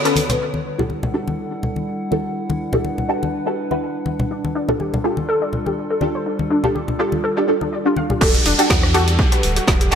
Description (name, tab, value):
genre	deep house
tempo	123 BPM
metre	4/4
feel	swing 54% on 16ths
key	unclear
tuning	A4 = 444 Hz
part	warbly tape-like pad	sustained chords	0.0-10.0 s	D3 to F#5	-26 LUFS	equal	chorus, built-in reverb, sidechain pumping
part	filtered dub chord stab	stabs	0.0-10.0 s	C#4 to B4	-22 LUFS	equal	phaser, ensemble chorus, sidechain pumping, ping-pong delay
part	warbly dusty pluck	arpeggios	0.1-0.3, 4.3-9.9 s	D4 to F5	-24 LUFS	left 2 dB	ensemble chorus, cassette tape, sidechain pumping, ping-pong delay
part	deep house drum kit	drums	0.1-0.4, 8.2-10.0 s	crash cymbal, hi-hat, rim click, snare drum	-23 LUFS	right 1 dB	low-pass filter on snare, low-pass filter on hats, low-pass filter on cymbals, low-pass filter on room
part	open jazz drum kit	drums	0.1-0.4, 8.2-10.0 s	hi-hat, snare drum	-33 LUFS	right 4 dB	none
part	congas	percussion	0.2-8.2 s	none	-24 LUFS	left 2 dB	none
part	sub bass with octave	bass	8.2-10.0 s	D1 to E2	-20 LUFS	equal	sidechain pumping
part	electronic kick drum	drums	8.2-9.8 s	none	-17 LUFS	equal	none
part	downlifter	sound effects	8.2-10.0 s	none	-23 LUFS	right 1 dB	none
room	moderate lush hall reverb, RT60 2.2 s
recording	none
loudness	-17 LUFS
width	side -8 dB against mid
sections	0.4-8.2 A section; 8.2-10.0 B section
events	break 0.0-0.4; band accent 0.0; filter sweep on drum 0.4-8.2; drop 8.2-10.0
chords	0.4 Em11; 4.3 F69; 8.2 Em11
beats	| 0.41 0.90 1.38 1.87 | 2.36 2.85 3.33 3.82 | 4.31 4.80 5.29 5.77 | 6.26 6.75 7.24 7.72 | 8.21 8.70 9.19 9.68